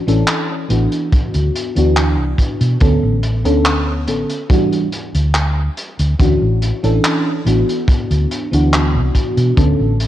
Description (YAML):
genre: vaporwave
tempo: 71 BPM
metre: 4/4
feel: straight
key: unclear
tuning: A4 = 440 Hz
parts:
  - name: FM electric piano with soft pad layer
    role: accompaniment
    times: 0.0-9.9 s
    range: D3 to A4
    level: -18 LUFS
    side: equal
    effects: wide subtle chorus, tape echo
  - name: hollow-body short-scale fingered electric bass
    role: bass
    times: 0.1-10.1 s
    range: A1 to B2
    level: -16 LUFS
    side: equal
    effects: none
  - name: crunchy breakbeat drum kit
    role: drums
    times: 0.1-10.1 s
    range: handclaps, hi-hat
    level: -22 LUFS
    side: equal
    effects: vintage 12-bit sampler grit, gated reverb
  - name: kick drum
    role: drums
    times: 1.1-9.8 s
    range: none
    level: -16 LUFS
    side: equal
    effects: vintage 12-bit sampler grit
room: light reverb, studio ambience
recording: cassette tape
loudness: -13 LUFS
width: side -13 dB against mid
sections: 0.0-10.1 A section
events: none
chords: 0.0 Dmaj9; 1.1 Cmaj9#11/D (rootless); 2.8 Bm9; 4.5 Em9; 6.2 Dmaj9; 7.9 Cmaj9#11/D (rootless)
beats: 0.28 1.12 1.97 | 2.81 3.66 4.50 5.35 | 6.20 7.04 7.88 8.73 | 9.57